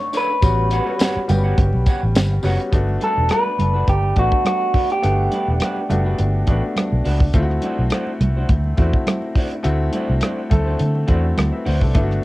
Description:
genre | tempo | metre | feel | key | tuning
lush 1970s-style soul | 104 BPM | 4/4 | swing 54% on 16ths | unclear | A4 = 439 Hz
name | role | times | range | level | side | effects
electric guitar through a small old amp | melody | 0.0-6.0 s | F#4 to C#5 | -21 LUFS | equal | cassette tape, analog delay
clear baby grand piano | accompaniment | 0.0-12.2 s | G3 to F#5 | -25 LUFS | left 2 dB | none
electric guitar through a small old amp | riff | 0.0-11.9 s | D4 to F#5 | -29 LUFS | right 2 dB | none
congas | percussion | 0.0-12.2 s | none | -27 LUFS | right 3 dB | none
tight funk drum kit | drums | 0.1-12.2 s | hi-hat, kick drum, rim click, snare drum | -19 LUFS | equal | cassette tape
tambourine | percussion | 0.1-2.6 s | none | -37 LUFS | left 3 dB | none
vintage muted fingered electric bass | bass | 0.4-12.2 s | E1 to D3 | -19 LUFS | equal | none
room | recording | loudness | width
little or no reverb | home recording on cassette | -16 LUFS | side -18 dB against mid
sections
0.0-2.7 A section; 2.7-12.2 B section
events
none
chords
0.4 A13; 2.7 Gmaj7; 7.3 D7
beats
| 0.42 1.00 1.57 2.15 | 2.73 3.30 3.88 4.46 | 5.03 5.61 6.18 6.76 | 7.34 7.91 8.49 9.07 | 9.64 10.22 10.79 11.37 | 11.95

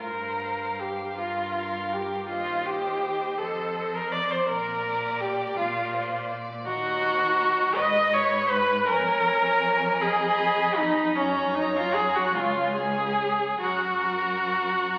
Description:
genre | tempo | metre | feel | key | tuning
classical, slow romantic movement for string quartet | 46-56 BPM (dotted quarters) | 6/8 | rubato | Bb major, F# major from 6.7 s | A4 = 440 Hz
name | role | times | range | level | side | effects
rich violin | melody | 0.0-15.0 s | Bb4 to F5 | -37 LUFS | equal | none
rich viola | accompaniment | 0.0-15.0 s | C#4 to D#5 | -26 LUFS | equal | none
rich cello | bass | 0.0-15.0 s | C#2 to Bb2 | -39 LUFS | equal | none
rich violin | second line | 0.4-15.0 s | D5 to B5 | -38 LUFS | equal | none
room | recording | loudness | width
wet recital hall reverb, RT60 1.7 s | very old 78 rpm record, vinyl crackle | -25 LUFS | mono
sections
0.0-15.0 A section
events
none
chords
0.0 Gm7; 2.3 Cm/Eb; 3.4 F7; 4.5 Bb; 6.7 D#m; 7.8 G#m; 8.9 C#7/E#; 11.2 F#; 12.3 C#5; 13.6 F#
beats
| 0.01 1.18 | 2.29 3.38 | 4.48 5.58 | 6.67 7.76 | 8.88 10.01 | 11.15 12.34 | 13.61 14.88

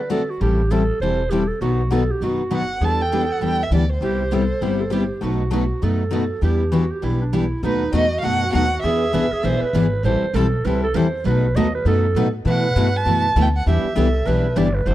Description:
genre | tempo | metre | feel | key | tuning
acoustic string swing (jazz manouche) | 199 BPM | 4/4 | swing 59% on 8ths | E minor | A4 = 440 Hz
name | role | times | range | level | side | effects
growling clarinet | second line | 0.0-14.9 s | D4 to D#5 | -25 LUFS | right 3 dB | none
upright bass | bass | 0.0-14.9 s | E1 to D3 | -22 LUFS | equal | none
picked steel-string acoustic guitar | accompaniment | 0.1-14.9 s | B2 to A4 | -23 LUFS | left 5 dB | none
picked steel-string acoustic guitar | accompaniment | 0.1-14.9 s | B2 to B4 | -26 LUFS | right 6 dB | none
dark violin | melody | 2.5-5.1, 7.7-9.7, 12.5-14.5 s | B4 to A5 | -23 LUFS | right 2 dB | none
room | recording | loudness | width
studio reverb | dry, close 1970s-style studio recording | -17 LUFS | side -14 dB against mid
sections
0.0-7.6 A section; 7.6-14.9 B section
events
none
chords
0.4 Am7; 1.6 B; 2.8 Em7; 4.0 Cmaj7; 5.2 B7; 6.4 Em7; 7.6 B7; 8.8 E7; 10.0 Am7; 11.3 B7; 12.5 B7sus4; 13.7 Em7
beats
0.11 | 0.41 0.71 1.01 1.31 | 1.62 1.92 2.22 2.52 | 2.82 3.12 3.42 3.72 | 4.02 4.33 4.63 4.93 | 5.23 5.53 5.83 6.13 | 6.43 6.74 7.04 7.34 | 7.64 7.94 8.24 8.54 | 8.84 9.14 9.45 9.75 | 10.05 10.35 10.65 10.95 | 11.25 11.55 11.86 12.16 | 12.46 12.76 13.06 13.36 | 13.66 13.96 14.27 14.57 | 14.87

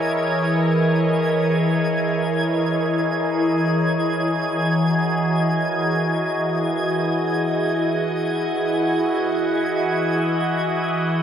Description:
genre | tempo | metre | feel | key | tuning
ambient | free time | none | none | unclear | A4 = 440 Hz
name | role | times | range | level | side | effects
evolving wavetable pad | sustained chords | 0.0-11.2 s | E3 to D#5 | -19 LUFS | equal | phaser, built-in reverb, shimmer reverb
twinkling granular texture | texture | 0.0-11.2 s | G#6 | -29 LUFS | right 1 dB | built-in reverb, shimmer reverb
room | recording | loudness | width
wet huge ambient reverb, RT60 7.5 s | dark, warm production | -18 LUFS | side -8 dB against mid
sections
0.0-11.2 A section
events
none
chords
0.0 F#13/E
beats
free time

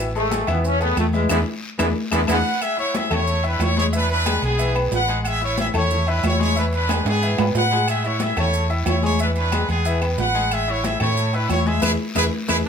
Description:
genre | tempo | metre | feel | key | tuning
latin, salsa | 182 BPM | 4/4 | straight | A major | A4 = 441 Hz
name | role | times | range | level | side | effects
raspy baritone saxophone | second line | 0.0-2.4, 12.7 s | E3 | -27 LUFS | right 6 dB | none
bright grand piano | accompaniment | 0.0-12.6 s | E3 to E6 | -26 LUFS | left 3 dB | none
hollow-body short-scale fingered electric bass | bass | 0.0-12.6 s | A1 to A2 | -22 LUFS | equal | none
congas | percussion | 0.1-12.6 s | none | -28 LUFS | left 3 dB | none
brilliant trombone section | melody | 0.2-2.4 s | E3 to C#4 | -24 LUFS | left 1 dB | none
maracas | percussion | 0.2-12.6 s | none | -36 LUFS | right 5 dB | none
guiro | percussion | 0.3-12.6 s | none | -38 LUFS | left 4 dB | none
timbales and agogo bells | percussion | 0.3-12.6 s | none | -29 LUFS | right 4 dB | none
claves | percussion | 0.5-12.6 s | none | -33 LUFS | left 6 dB | none
bright trumpet section | melody | 2.3-12.6 s | B3 to F#5 | -22 LUFS | equal | tape echo
room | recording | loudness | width
moderate studio reverb, RT60 0.6 s | none | -18 LUFS | side -7 dB against mid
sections
0.0-2.6 A section; 2.6-12.7 B section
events
band accent 1.3-2.6, 11.8-12.7; drum fill 2.0-2.6, 6.9-7.9, 11.8-12.7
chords
0.0 A5; 1.3 E7; 2.6 Amaj7; 3.9 E7; 5.2 Amaj7; 6.6 E7; 7.9 Amaj7; 9.2 E7; 10.5 Amaj7; 11.8 E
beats
0.31 0.64 0.97 | 1.30 1.63 1.96 2.29 | 2.62 2.94 3.27 3.60 | 3.93 4.26 4.59 4.92 | 5.25 5.58 5.91 6.23 | 6.56 6.89 7.22 7.55 | 7.88 8.21 8.54 8.87 | 9.20 9.52 9.85 10.18 | 10.51 10.84 11.17 11.50 | 11.83 12.16 12.49

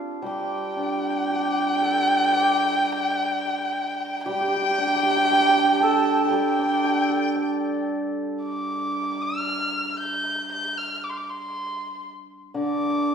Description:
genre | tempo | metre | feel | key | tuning
chinese traditional, Chinese chamber ensemble | 56-61 BPM | 2/4 | rubato | G shang mode | A4 = 436 Hz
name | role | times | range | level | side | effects
hammered dulcimer | second line | 0.0-9.5 s | C4 to A4 | -30 LUFS | right 2 dB | none
dark erhu | melody | 0.2-13.1 s | G5 to G6 | -24 LUFS | right 1 dB | none
hammered dulcimer | accompaniment | 0.2-13.1 s | D3 to D5 | -27 LUFS | right 1 dB | none
dizi | second line | 0.3-7.9 s | G5 to A5 | -30 LUFS | left 2 dB | none
room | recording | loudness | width
wet recital hall reverb, RT60 1.6 s | recorded in a church or concert hall | -21 LUFS | side -7 dB against mid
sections
0.0-8.4 A section; 8.4-13.1 B section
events
none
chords
none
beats
| 0.25 1.28 | 2.29 3.29 | 4.28 5.28 | 6.31 7.35 | 8.42 9.48 | 10.52 11.55 | 12.57

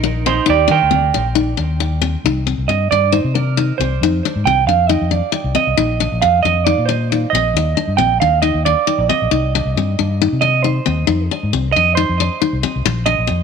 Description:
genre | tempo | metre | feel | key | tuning
highlife guitar band | 136 BPM | 4/4 | straight | C minor | A4 = 441 Hz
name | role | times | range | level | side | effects
clean electric guitar | melody | 0.0-13.4 s | Eb4 to G5 | -17 LUFS | right 11 dB | tape echo
picked steel-string acoustic guitar | accompaniment | 0.0-13.4 s | C4 to Eb4 | -19 LUFS | left 10 dB | none
fingered electric bass | bass | 0.0-13.4 s | Bb1 to Eb3 | -18 LUFS | left 1 dB | none
room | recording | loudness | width
moderate echo chamber reverb, RT60 1.3 s, small room ambience | 1960s-style stereo with parts hard left and right | -13 LUFS | side -6 dB against mid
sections
0.0-2.3 A section; 2.3-13.4 B section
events
clean electric guitar solo 2.3-13.4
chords
0.5 Ebmaj7; 2.3 Cmadd9; 4.0 F5; 5.8 Bbsus4; 7.6 Ebmaj7(no3); 9.3 Cmadd9; 11.1 F5; 12.9 Bbsus4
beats
0.05 | 0.49 0.93 1.37 1.81 | 2.25 2.69 3.13 3.58 | 4.02 4.46 4.90 5.34 | 5.78 6.23 6.67 7.11 | 7.55 7.99 8.44 8.88 | 9.32 9.76 10.20 10.65 | 11.09 11.53 11.97 12.41 | 12.86 13.30

